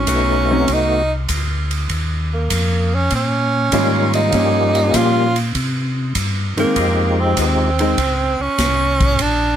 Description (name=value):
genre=soul jazz organ trio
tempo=99 BPM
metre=4/4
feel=swing 69% on 8ths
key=unclear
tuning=A4 = 440 Hz
part: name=breathy tenor saxophone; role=melody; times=0.0-9.6 s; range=Bb3 to F4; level=-18 LUFS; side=right 3 dB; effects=none
part: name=vintage hollow-body jazz guitar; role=accompaniment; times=0.0-8.0 s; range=Eb3 to F4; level=-20 LUFS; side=equal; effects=none
part: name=mellow tonewheel organ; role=bass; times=0.0-9.6 s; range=Bb1 to C3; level=-20 LUFS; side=left 1 dB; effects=chorus vibrato, slow rotary speaker
part: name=percussive tonewheel organ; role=melody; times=0.1-7.7 s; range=G3 to G4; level=-19 LUFS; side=left 3 dB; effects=slow rotary speaker, overdrive, chorus vibrato
part: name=swinging big-band drum kit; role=drums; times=0.1-9.4 s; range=hi-hat, kick drum, ride cymbal, snare drum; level=-23 LUFS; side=right 1 dB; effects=none
room=light reverb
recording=close, detailed microphones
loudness=-15 LUFS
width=side -9 dB against mid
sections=0.0-9.6 A section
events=tenor saxophone solo 0.0-9.6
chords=0.0 Adim7; 1.9 Eb9; 4.3 Gm7b5; 5.5 C5; 6.8 Fm7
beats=0.07 0.68 1.29 | 1.90 2.50 3.11 3.72 | 4.33 4.93 5.54 6.15 | 6.76 7.37 7.97 8.58 | 9.19